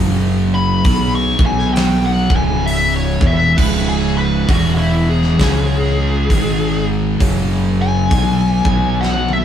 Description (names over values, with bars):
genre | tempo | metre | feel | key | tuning
stoner and doom metal | 66 BPM | 4/4 | swing 60% on 8ths | C# minor | A4 = 440 Hz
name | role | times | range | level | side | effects
deep rumbling drone | sustained chords | 0.0-9.4 s | F#3 to F#5 | -32 LUFS | right 3 dB | none
fuzz guitar | riff | 0.0-9.4 s | C#2 to C#4 | -24 LUFS | equal | distortion
thick fuzz guitar | riff | 0.0-9.4 s | C#2 to C#4 | -22 LUFS | left 6 dB | distortion
thick fuzz guitar | riff | 0.0-9.4 s | C#2 to C#4 | -20 LUFS | right 4 dB | distortion
fuzz fingered electric bass | bass | 0.0-9.4 s | C#1 to C#2 | -20 LUFS | equal | overdrive
fuzz lead guitar | melody | 0.5-9.4 s | E4 to C#6 | -20 LUFS | left 3 dB | wah, distortion
big rock drum kit | drums | 0.8-9.4 s | crash cymbal, hi-hat, kick drum, snare drum, toms | -19 LUFS | right 1 dB | none
room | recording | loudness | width
light reverb | band playing live in one room | -13 LUFS | side -9 dB against mid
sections
0.0-9.4 A section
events
lead electric guitar solo 0.0-9.4; drum fill 9.0-9.4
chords
0.0 F#5; 0.9 C#5; 2.2 C#m; 4.5 E5; 5.4 C#5; 6.3 G#5; 7.2 F#5; 8.1 C#5; 8.6 B5